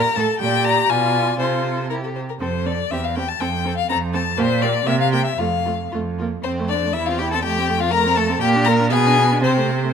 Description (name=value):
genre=quick classical-period movement for string quartet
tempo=120 BPM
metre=2/4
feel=rubato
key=F major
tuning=A4 = 439 Hz
part: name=rich violin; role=melody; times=0.0-9.9 s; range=A4 to Bb5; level=-21 LUFS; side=left 9 dB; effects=none
part: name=warm violin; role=second line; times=0.0-9.9 s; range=C4 to D5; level=-25 LUFS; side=left 2 dB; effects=none
part: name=rich viola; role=accompaniment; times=0.2-9.9 s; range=A3 to A4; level=-25 LUFS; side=right 4 dB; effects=none
part: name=rich cello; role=bass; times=0.2-9.9 s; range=E2 to C3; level=-22 LUFS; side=right 4 dB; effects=none
room=moderate scoring stage reverb, RT60 1.6 s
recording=close, detailed microphones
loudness=-17 LUFS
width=side -7 dB against mid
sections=0.0-6.4 A section; 6.4-9.9 B section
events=none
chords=0.4 Gm/Bb; 0.9 Bdim7; 1.4 F/C; 1.9 C; 2.4 F; 2.9 C/E; 3.4 F; 4.4 Gm/Bb; 4.9 C5; 5.4 F; 6.9 C/E; 7.4 F; 8.4 Gm/Bb; 8.9 Bm6; 9.4 Am/C